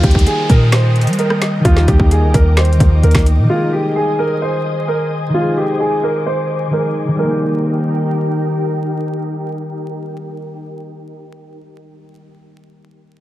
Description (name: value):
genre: hip hop, trap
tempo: 130 BPM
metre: 4/4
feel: half-time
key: Eb major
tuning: A4 = 439 Hz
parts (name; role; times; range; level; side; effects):
- dark concert grand piano; melody; 0.0-8.5 s; F4 to C5; -19 LUFS; right 1 dB; low-pass filter, tape echo
- concert harp; accompaniment; 0.0-11.3 s; Eb3 to Ab4; -19 LUFS; left 1 dB; low-pass filter
- ethereal airy pad; sustained chords; 0.0-11.2 s; Eb4 to Eb6; -26 LUFS; equal; ensemble chorus, built-in reverb, low-pass filter
- warm 808-style bass; bass; 0.0-3.5 s; D2 to G3; -12 LUFS; equal; none
- trap drum kit; drums; 0.0-3.4 s; finger snaps, hi-hat, kick drum, rim click, snare drum; -15 LUFS; equal; overdrive
- downlifter; sound effects; 0.0-3.5 s; none; -28 LUFS; equal; none
room: little or no reverb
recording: vinyl crackle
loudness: -13 LUFS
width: side -15 dB against mid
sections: 0.0-7.2 A section; 7.2-10.9 B section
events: none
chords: 0.0 Eb; 3.5 Ab; 7.2 Eb